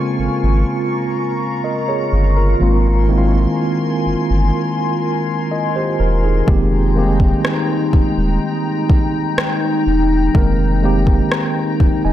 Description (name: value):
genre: contemporary R&B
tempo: 62 BPM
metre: 4/4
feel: straight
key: F minor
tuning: A4 = 440 Hz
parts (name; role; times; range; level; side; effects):
- mellow tine electric piano; accompaniment; 0.0-12.1 s; Db3 to Ab5; -19 LUFS; right 1 dB; medium stereo tremolo
- glassy FM pad; sustained chords; 0.0-12.1 s; Ab3 to Db6; -21 LUFS; left 2 dB; ensemble chorus, built-in reverb
- saturated sub bass; bass; 0.2-12.1 s; Eb1 to Ab1; -16 LUFS; equal; none
- smooth R&B drum kit; drums; 6.5-12.0 s; kick drum, rim click; -16 LUFS; equal; none
room: little or no reverb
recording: none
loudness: -14 LUFS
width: side -12 dB against mid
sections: 0.0-12.1 A section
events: none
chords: 0.0 Bbm7; 2.6 Ab69; 6.5 Fm11